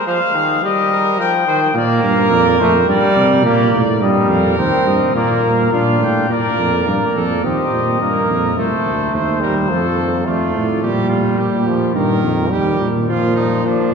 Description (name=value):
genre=classical, imitative canzona for brass ensemble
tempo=106 BPM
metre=4/4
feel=straight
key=Eb major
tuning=A4 = 438 Hz
part: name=clear cornet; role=melody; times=0.0-10.8 s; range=Bb4 to G5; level=-21 LUFS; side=left 5 dB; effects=none
part: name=bright trumpet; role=second line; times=0.0-13.9 s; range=D4 to D5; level=-21 LUFS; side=right 3 dB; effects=none
part: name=brilliant trombone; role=accompaniment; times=0.1-13.9 s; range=Eb3 to D4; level=-18 LUFS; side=right 1 dB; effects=none
part: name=warm tuba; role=bass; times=1.7-13.9 s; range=C2 to C3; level=-17 LUFS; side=equal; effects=none
room=wet cathedral reverb, RT60 6.6 s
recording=heard from further back in the room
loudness=-13 LUFS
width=side -5 dB against mid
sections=0.0-6.3 A section; 6.3-13.9 B section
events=none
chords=0.0 Ab; 0.6 Eb/G; 1.8 Bb; 2.9 Gm; 4.0 Eb; 5.2 Bb; 7.4 Eb; 8.6 Adim/C; 9.7 Dm/F; 10.8 Gm/Bb; 12.0 Eb; 13.1 Bb